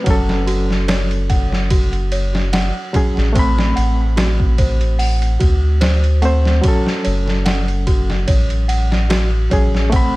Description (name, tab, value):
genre	trip hop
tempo	73 BPM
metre	4/4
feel	swing 55% on 16ths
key	F# minor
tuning	A4 = 443 Hz
part	barky reed electric piano	accompaniment	0.0-10.2 s	F#3 to B5	-22 LUFS	equal	overdrive, tremolo, vintage 12-bit sampler grit, tape echo
part	small celesta	arpeggios	0.1-10.1 s	F#4 to F#5	-25 LUFS	right 2 dB	tape echo
part	soft dub sub bass	bass	0.1-10.2 s	F#1 to D2	-17 LUFS	equal	none
part	trip hop sampler-style drum kit	drums	0.1-10.1 s	hi-hat, kick drum, ride cymbal, snare drum	-18 LUFS	equal	none
room	digital ambience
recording	none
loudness	-14 LUFS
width	side -20 dB against mid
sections	0.0-10.2 A section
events	none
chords	0.1 F#m; 3.4 Amadd9; 6.6 F#m